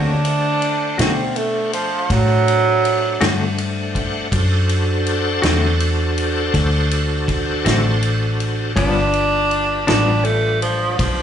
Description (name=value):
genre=slow blues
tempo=54 BPM (dotted quarters)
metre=12/8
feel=straight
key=D mixolydian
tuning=A4 = 440 Hz
part: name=mellow tenor saxophone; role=second line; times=0.0-11.2 s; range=F3 to D4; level=-18 LUFS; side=right 3 dB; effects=plate reverb, slapback echo
part: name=semi-hollow electric guitar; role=accompaniment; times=0.0-10.1 s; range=G2 to F#4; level=-22 LUFS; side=left 5 dB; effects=tremolo, plate reverb, slapback echo
part: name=bright tonewheel organ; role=sustained chords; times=0.0-11.2 s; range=G3 to F#5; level=-24 LUFS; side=equal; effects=overdrive, chorus vibrato, slow rotary speaker
part: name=vintage muted fingered electric bass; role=bass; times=0.0-11.2 s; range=G1 to D3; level=-20 LUFS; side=equal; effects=none
part: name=natural country drum kit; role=drums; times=0.2-11.2 s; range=kick drum, ride cymbal, snare drum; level=-24 LUFS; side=equal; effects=none
room=moderate club reverb, RT60 0.6 s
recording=live gig heard through the venue's PA, club reverb, nothing above 10.6 kHz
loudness=-16 LUFS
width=side -9 dB against mid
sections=0.0-11.2 A section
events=tenor saxophone solo 0.0-11.2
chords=0.0 D7; 8.8 G7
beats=0.98 2.10 3.21 | 4.32 5.43 6.54 7.66 | 8.77 9.88 10.99